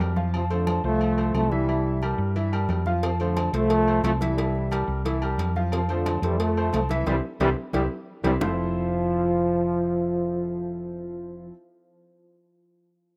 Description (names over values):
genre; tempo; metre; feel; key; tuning
latin, salsa; 178 BPM; 4/4; straight; F major; A4 = 438 Hz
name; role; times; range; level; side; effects
clear concert grand piano; accompaniment; 0.0-11.5 s; E3 to F5; -33 LUFS; equal; none
hollow-body short-scale fingered electric bass; bass; 0.0-11.5 s; F1 to G2; -30 LUFS; equal; none
congas; percussion; 0.0-8.5 s; none; -37 LUFS; equal; none
timbales and agogo bells; percussion; 0.0-8.5 s; none; -36 LUFS; equal; none
mellow trombone section; melody; 0.3-11.5 s; C3 to A3; -28 LUFS; equal; none
cowbell and bongos; percussion; 3.0-8.5 s; none; -37 LUFS; equal; none
room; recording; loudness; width
small room ambience; rough home demo mix; -25 LUFS; mono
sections
0.0-8.4 A section; 8.4-11.1 B section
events
drum fill 7.1-8.4; band accent 7.1-8.4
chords
0.3 Fmaj7; 1.7 C7; 3.0 Fmaj7; 4.4 C7; 5.7 Fmaj7; 7.1 C; 8.4 Fmaj7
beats
0.00 | 0.34 0.68 1.01 1.35 | 1.68 2.02 2.36 2.69 | 3.03 3.37 3.70 4.04 | 4.38 4.71 5.05 5.39 | 5.72 6.06 6.39 6.73 | 7.07 7.40 7.74 8.08 | 8.41 8.75 9.09 9.42 | 9.76 10.09 10.43 10.77